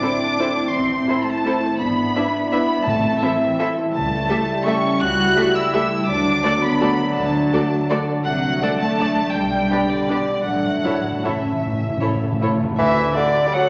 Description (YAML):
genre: classical, orchestral ballroom waltz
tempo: 146-180 BPM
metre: 3/4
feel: rubato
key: D major from 3.9 s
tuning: A4 = 440 Hz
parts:
  - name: muted chamber violin section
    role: melody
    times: 0.0-13.6 s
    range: D5 to F#6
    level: -26 LUFS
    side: equal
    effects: none
  - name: muted chamber violin section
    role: second line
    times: 0.0-13.7 s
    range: G4 to F#5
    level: -30 LUFS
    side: equal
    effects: none
  - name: muted chamber viola section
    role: accompaniment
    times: 0.0-13.6 s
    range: A3 to A4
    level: -29 LUFS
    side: equal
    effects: none
  - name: mellow French horn section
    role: sustained chords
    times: 0.0-12.6 s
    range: F#3 to E4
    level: -26 LUFS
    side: equal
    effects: none
  - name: concert harp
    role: arpeggios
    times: 0.0-13.7 s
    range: G#2 to A5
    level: -31 LUFS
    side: equal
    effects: none
  - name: muted studio cello section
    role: bass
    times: 0.0-13.1 s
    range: D2 to F#4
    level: -28 LUFS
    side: equal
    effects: none
  - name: muted chamber double bass section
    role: bass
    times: 0.7-13.1 s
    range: G#1 to D2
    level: -34 LUFS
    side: equal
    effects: none
  - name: timpani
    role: percussion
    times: 2.9-3.4, 10.5-12.8 s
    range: A2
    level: -27 LUFS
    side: equal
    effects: none
  - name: clear bassoon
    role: accompaniment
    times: 12.8-13.7 s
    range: D3 to G3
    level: -20 LUFS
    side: equal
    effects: none
  - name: warm tuba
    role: bass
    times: 12.8-13.1 s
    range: D2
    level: -32 LUFS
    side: equal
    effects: none
room: wet recital hall reverb, RT60 1.5 s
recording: nothing above 7.7 kHz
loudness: -20 LUFS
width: mono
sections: 0.0-12.8 A section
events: timpani fill 10.5-12.8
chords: 0.0 Am; 1.8 E7/G#; 2.9 Am; 3.9 A7/C#; 6.1 D; 8.3 D7/C; 9.3 G/B; 10.5 A; 12.8 D